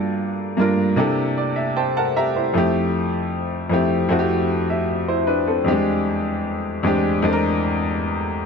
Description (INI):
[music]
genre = soul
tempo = 77 BPM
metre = 4/4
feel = straight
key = unclear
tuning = A4 = 440 Hz
[part]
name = clear grand piano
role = solo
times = 0.0-8.5 s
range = E2 to Bb5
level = -18 LUFS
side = equal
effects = none
[sound]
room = light reverb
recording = none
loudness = -18 LUFS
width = side -5 dB against mid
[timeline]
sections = 0.0-8.5 A section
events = grand piano fill 1.0-2.5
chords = 0.0 Gm9; 1.0 C13; 2.5 Fmaj7; 5.7 E7alt